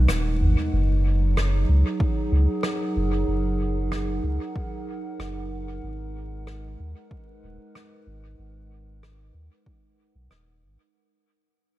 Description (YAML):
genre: ambient dub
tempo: 94 BPM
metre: 4/4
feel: swing 53% on 16ths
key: G# minor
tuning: A4 = 442 Hz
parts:
  - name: warbly tape-like pad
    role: sustained chords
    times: 0.0-10.9 s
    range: F#3 to F#5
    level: -30 LUFS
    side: right 2 dB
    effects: chorus, built-in reverb
  - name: warm sub bass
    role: bass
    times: 0.0-10.8 s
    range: D#1 to D#2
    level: -23 LUFS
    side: equal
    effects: none
  - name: soft-mallet drum kit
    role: drums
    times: 0.1-10.4 s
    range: rim click, shaker, toms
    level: -30 LUFS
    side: equal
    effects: dub echo
  - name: electronic kick drum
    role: drums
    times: 2.0-9.8 s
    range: none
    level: -26 LUFS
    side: equal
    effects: overdrive
room: small room reverb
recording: vinyl crackle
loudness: -22 LUFS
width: side -16 dB against mid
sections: 0.0-10.9 A section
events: fade-out 0.0-10.9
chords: 0.0 G#m9; 0.7 F#69; 5.8 G#m9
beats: 0.09 | 0.72 1.36 2.00 2.64 | 3.28 3.92 4.55 5.19 | 5.83 6.47 7.11 7.75 | 8.38 9.02 9.66 10.30